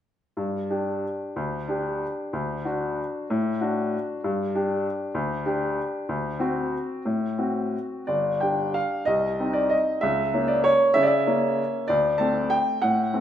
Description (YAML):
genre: classical, piano waltz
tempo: 164-206 BPM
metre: 3/4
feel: rubato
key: G minor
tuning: A4 = 441 Hz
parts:
  - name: clear upright piano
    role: solo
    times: 0.4-13.2 s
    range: G1 to A5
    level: -22 LUFS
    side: equal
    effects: none
room: wet recital hall reverb, RT60 1.4 s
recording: minimal, uncompressed stereo recording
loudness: -22 LUFS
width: side -10 dB against mid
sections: 0.4-8.1 A section; 8.1-13.2 B section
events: none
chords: 0.4 G5; 2.3 D; 4.2 G5; 6.1 D7; 8.1 G5; 9.1 Cmadd9; 10.0 C#m6; 11.9 D7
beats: | 0.36 0.69 1.02 | 1.36 1.69 2.02 | 2.34 2.66 2.99 | 3.31 3.62 3.94 | 4.24 4.54 4.85 | 5.15 5.45 5.77 | 6.08 6.40 6.73 | 7.06 7.38 7.73 | 8.09 8.42 8.75 | 9.07 9.40 9.72 | 10.04 10.35 10.67 | 10.98 11.28 11.60 | 11.90 12.21 12.52 | 12.83 13.14